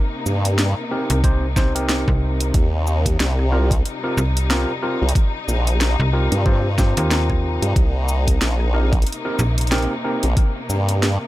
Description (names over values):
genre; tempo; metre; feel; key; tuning
glitch hop; 92 BPM; 4/4; swing 57% on 16ths; C minor pentatonic; A4 = 442 Hz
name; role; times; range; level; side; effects
warm studio string section; sustained chords; 0.0-11.3 s; C3 to Eb4; -28 LUFS; left 3 dB; sidechain pumping
formant-sweep wobble bass; bass; 0.3-11.2 s; Bb1 to G2; -18 LUFS; equal; chorus
drum and bass drum kit; drums; 0.3-11.2 s; hi-hat, rim click, shaker, snare drum; -24 LUFS; equal; overdrive
overdriven tine electric piano; stabs; 0.9-10.3 s; C4 to C5; -25 LUFS; equal; sidechain pumping, ping-pong delay
slap-like FM bass; bass; 1.1-9.9 s; Bb1 to Eb2; -20 LUFS; equal; tube saturation
electronic kick drum; drums; 1.2-10.5 s; none; -18 LUFS; equal; overdrive
room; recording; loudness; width
little or no reverb; none; -17 LUFS; side -16 dB against mid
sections
0.0-11.3 A section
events
none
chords
0.0 Cm7; 2.5 Eb6; 7.8 Cm7